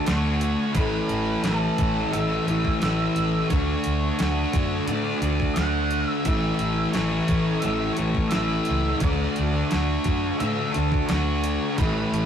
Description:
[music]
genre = rock, shoegaze and dream pop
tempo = 87 BPM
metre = 4/4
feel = straight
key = unclear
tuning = A4 = 439 Hz
[part]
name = octave-fuzz lead guitar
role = melody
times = 0.0-12.3 s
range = A4 to F#5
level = -31 LUFS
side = equal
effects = distortion
[part]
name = biting overdriven guitar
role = riff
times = 0.0-12.3 s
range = A2 to F#4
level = -32 LUFS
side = right 6 dB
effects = none
[part]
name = thick fuzz guitar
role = riff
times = 0.0-12.3 s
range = A2 to D4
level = -24 LUFS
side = left 2 dB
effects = distortion
[part]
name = vintage muted fingered electric bass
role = bass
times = 0.1-12.3 s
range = A1 to A2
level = -28 LUFS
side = right 1 dB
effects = none
[part]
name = detuned 8-bit digital drum machine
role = drums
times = 0.1-12.3 s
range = hi-hat, kick drum, snare drum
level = -27 LUFS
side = equal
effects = none
[sound]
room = moderate stone room reverb, RT60 1.1 s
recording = rough rehearsal-room recording, warm saturation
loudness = -21 LUFS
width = side -8 dB against mid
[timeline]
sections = 0.0-12.3 A section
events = none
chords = 0.0 Dmaj7; 0.8 A; 3.5 Dmaj7; 6.3 A; 9.0 Dmaj7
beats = 0.07 | 0.76 1.45 2.13 2.82 | 3.51 4.20 4.89 5.58 | 6.27 6.96 7.65 8.34 | 9.03 9.72 10.41 11.10 | 11.79

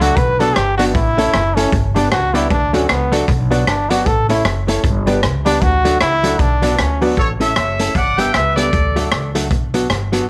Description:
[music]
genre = ska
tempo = 154 BPM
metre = 4/4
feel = swing 60% on 8ths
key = unclear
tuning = A4 = 440 Hz
[part]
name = brilliant trombone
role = melody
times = 0.0-7.0 s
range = B3 to B4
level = -20 LUFS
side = equal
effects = none
[part]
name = hollow-body jazz guitar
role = accompaniment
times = 0.0-10.3 s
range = F#3 to A4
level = -23 LUFS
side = equal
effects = none
[part]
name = dark upright piano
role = stabs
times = 0.0-7.1 s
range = C#4 to D5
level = -25 LUFS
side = equal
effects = none
[part]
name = upright bass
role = bass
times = 0.0-10.2 s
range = F#1 to D2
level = -22 LUFS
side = equal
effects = none
[part]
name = raw garage drum kit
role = drums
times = 0.0-10.2 s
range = hi-hat, kick drum, rim click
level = -22 LUFS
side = equal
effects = none
[part]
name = warm horn section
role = melody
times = 7.2-9.3 s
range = A4 to G5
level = -20 LUFS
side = equal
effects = none
[sound]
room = light reverb, small room reverb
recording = none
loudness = -16 LUFS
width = mono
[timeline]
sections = 0.0-7.2 A section; 7.2-10.3 B section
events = trombone solo 0.0-7.2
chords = 0.2 Bm; 0.9 A; 1.7 G; 2.5 D; 3.3 Bm; 4.1 A; 4.8 G; 5.6 D; 6.4 Bm; 7.2 A; 8.0 G; 8.7 D; 9.5 Bm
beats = 0.17 0.56 | 0.95 1.34 1.73 2.12 | 2.50 2.89 3.28 3.67 | 4.06 4.45 4.84 5.23 | 5.62 6.00 6.39 6.78 | 7.17 7.56 7.95 8.34 | 8.73 9.12 9.51 9.90

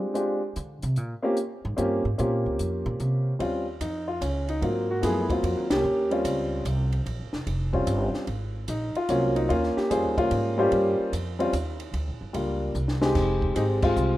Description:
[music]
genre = jazz piano trio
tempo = 148 BPM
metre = 3/4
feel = swing 66% on 8ths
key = Eb mixolydian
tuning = A4 = 440 Hz
[part]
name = warm grand piano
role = melody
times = 0.0-14.2 s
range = F3 to C5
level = -25 LUFS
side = equal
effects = none
[part]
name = compact cocktail drum kit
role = drums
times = 0.2-14.1 s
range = crash cymbal, hi-hat, kick drum, ride cymbal, snare drum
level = -34 LUFS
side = equal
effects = none
[part]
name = upright bass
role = bass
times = 0.6-14.2 s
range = F1 to D3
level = -28 LUFS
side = equal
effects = none
[sound]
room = light reverb, small room reverb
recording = rough home demo mix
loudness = -24 LUFS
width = side -15 dB against mid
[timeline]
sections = 0.0-3.4 A section; 3.4-14.2 B section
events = upright bass solo 0.0-3.4; band accent 5.6, 13.8; drum fill 12.8-13.2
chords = 0.0 Fm69; 1.0 Bbm13; 3.4 Eb7sus2; 4.6 Ab13; 5.8 Eb13; 7.1 Bb7(no3); 7.9 Dbmaj7#11/G; 8.3 Ab13; 9.5 Eb13; 11.9 Gm7; 12.8 C5; 13.2 Fm7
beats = 0.15 0.56 | 0.96 1.37 1.77 | 2.18 2.58 2.99 | 3.40 3.80 4.21 | 4.62 5.02 5.43 | 5.84 6.24 6.65 | 7.06 7.46 7.87 | 8.28 8.69 9.09 | 9.50 9.91 10.31 | 10.72 11.13 11.53 | 11.94 12.35 12.75 | 13.16 13.56 13.97

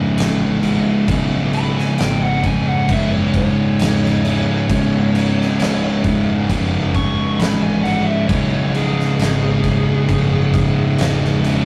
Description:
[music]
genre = stoner and doom metal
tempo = 67 BPM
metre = 4/4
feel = straight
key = C# minor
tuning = A4 = 440 Hz
[part]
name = fuzz guitar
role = riff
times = 0.0-11.7 s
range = C#2 to E4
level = -28 LUFS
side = equal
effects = none
[part]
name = thick fuzz guitar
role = riff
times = 0.0-11.7 s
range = C#2 to C#3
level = -23 LUFS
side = equal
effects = distortion
[part]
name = thick fuzz guitar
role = riff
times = 0.0-11.7 s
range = C#2 to C#3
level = -21 LUFS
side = equal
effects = distortion
[part]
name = fuzz fingered electric bass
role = bass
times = 0.2-11.6 s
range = C#1 to B1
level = -28 LUFS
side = equal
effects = overdrive
[part]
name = oversized low-tuned drum kit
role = drums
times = 0.2-11.7 s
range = crash cymbal, kick drum, snare drum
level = -24 LUFS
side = equal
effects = none
[part]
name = fuzz lead guitar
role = melody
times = 1.5-11.4 s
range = G#4 to C#6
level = -28 LUFS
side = equal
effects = distortion
[sound]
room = moderate booth ambience, RT60 0.2 s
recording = rough rehearsal-room recording, tube saturation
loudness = -17 LUFS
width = mono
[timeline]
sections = 0.0-11.7 A section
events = lead electric guitar solo 0.0-11.7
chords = 0.0 C#m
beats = 0.18 | 1.08 1.98 2.88 3.79 | 4.69 5.59 6.49 7.39 | 8.29 9.19 10.09 10.99

